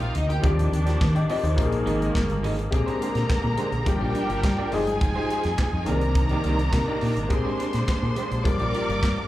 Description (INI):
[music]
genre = disco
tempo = 105 BPM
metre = 4/4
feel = straight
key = unclear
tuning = A4 = 441 Hz
[part]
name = warm symphonic violin section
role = second line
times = 0.0-9.3 s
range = Eb4 to D6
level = -30 LUFS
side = left 1 dB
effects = analog delay, slapback echo
[part]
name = electric guitar at the edge of break-up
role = accompaniment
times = 0.0-9.2 s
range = Ab3 to Eb5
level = -32 LUFS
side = right 4 dB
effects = slapback echo
[part]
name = warm baby grand piano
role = accompaniment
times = 0.0-9.3 s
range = Eb3 to G5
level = -30 LUFS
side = left 4 dB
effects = slapback echo
[part]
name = rich studio string section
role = sustained chords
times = 0.0-9.3 s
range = C3 to Bb4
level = -31 LUFS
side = right 1 dB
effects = none
[part]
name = fingered electric bass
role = bass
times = 0.0-9.1 s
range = F1 to Eb3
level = -25 LUFS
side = equal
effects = none
[part]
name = modern studio drum kit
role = drums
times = 0.0-9.2 s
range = handclaps, hi-hat, kick drum, snare drum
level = -27 LUFS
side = equal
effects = none
[sound]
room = light reverb, small room ambience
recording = live gig heard through the venue's PA, club ambience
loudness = -21 LUFS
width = side -15 dB against mid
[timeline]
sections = 0.0-2.7 A section; 2.7-9.3 B section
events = none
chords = 0.4 Ebmaj13; 1.6 Bb7sus4; 2.7 Bb13; 3.9 Gm7; 4.7 Fm9; 5.9 Cm9; 7.3 Bb13; 8.5 Gm7